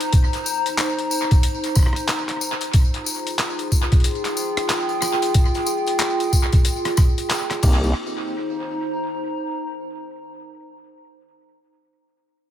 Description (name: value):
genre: glitch hop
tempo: 92 BPM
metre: 4/4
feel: swing 63% on 16ths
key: C minor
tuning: A4 = 440 Hz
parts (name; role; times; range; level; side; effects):
- boom bap sampler-style drum kit; drums; 0.0-7.8 s; crash cymbal, handclaps, hi-hat, rim click; -26 LUFS; left 1 dB; tape echo
- tambourine; percussion; 0.0-7.9 s; none; -30 LUFS; left 4 dB; tape echo
- warbly tape-like pad; texture; 0.0-10.5 s; Eb4 to Bb5; -24 LUFS; equal; chorus, built-in reverb, sidechain pumping
- electronic kick drum; drums; 0.1-7.8 s; none; -16 LUFS; equal; none
- overdriven tine electric piano; stabs; 7.6-7.9 s; Bb3 to G4; -30 LUFS; equal; medium tremolo, sidechain pumping, tape echo
- formant-sweep wobble bass; bass; 7.6-7.9 s; C2; -20 LUFS; equal; chorus, overdrive
room: light reverb, digital ambience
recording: echo-heavy mix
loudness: -18 LUFS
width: side -10 dB against mid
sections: 0.0-8.0 A section; 8.0-10.6 B section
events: none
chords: 0.0 Cm7; 2.7 Fmadd9; 7.6 Cm7